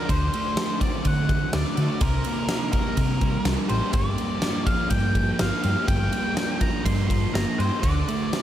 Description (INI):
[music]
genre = rock, shoegaze and dream pop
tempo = 124 BPM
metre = 4/4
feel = straight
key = G minor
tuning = A4 = 440 Hz
[part]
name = octave-fuzz lead guitar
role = melody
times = 0.0-8.4 s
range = Bb4 to C6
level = -30 LUFS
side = left 1 dB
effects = distortion, analog delay
[part]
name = fuzz guitar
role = riff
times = 0.0-8.4 s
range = G2 to G4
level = -28 LUFS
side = right 1 dB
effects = distortion, analog chorus
[part]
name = hollow-body short-scale picked electric bass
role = bass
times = 0.1-8.0 s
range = G1 to D3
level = -24 LUFS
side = equal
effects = none
[part]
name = huge arena drum kit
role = drums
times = 0.1-8.4 s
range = kick drum, ride cymbal, snare drum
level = -26 LUFS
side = equal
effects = none
[sound]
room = studio ambience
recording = none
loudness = -21 LUFS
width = side -11 dB against mid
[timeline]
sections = 0.0-8.4 A section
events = none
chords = 0.1 D7; 2.0 Cm7; 3.9 Gm7; 7.8 D7(no3)